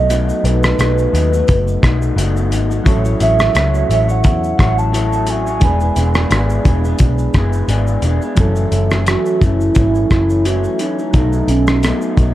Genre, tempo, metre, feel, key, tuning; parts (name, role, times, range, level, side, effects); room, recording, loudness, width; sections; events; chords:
indie pop, bedroom pop; 87 BPM; 4/4; swing 55% on 16ths; F# dorian from 8.4 s; A4 = 439 Hz
hollow clarinet-like synth lead; melody; 0.0-12.3 s; B3 to A5; -19 LUFS; right 3 dB; lush chorus, analog delay
electric guitar through a small old amp; accompaniment; 0.0-12.3 s; F#2 to C#5; -22 LUFS; left 4 dB; lush chorus, vibrato effect
soft electric-piano-like synth keys; accompaniment; 0.0-12.3 s; E3 to B4; -24 LUFS; right 4 dB; chorus, tremolo, cassette tape
vintage muted picked electric bass; bass; 0.0-12.3 s; E1 to E2; -16 LUFS; equal
cloth-damped thuddy drum kit; drums; 0.1-12.3 s; hi-hat, kick drum, rim click, shaker; -16 LUFS; equal
small room reverb; dark, warm production; -12 LUFS; side -14 dB against mid
0.0-8.4 A section; 8.4-12.3 B section
0.0 B7; 2.9 A6; 5.6 E7; 8.4 F#m7; 11.1 B7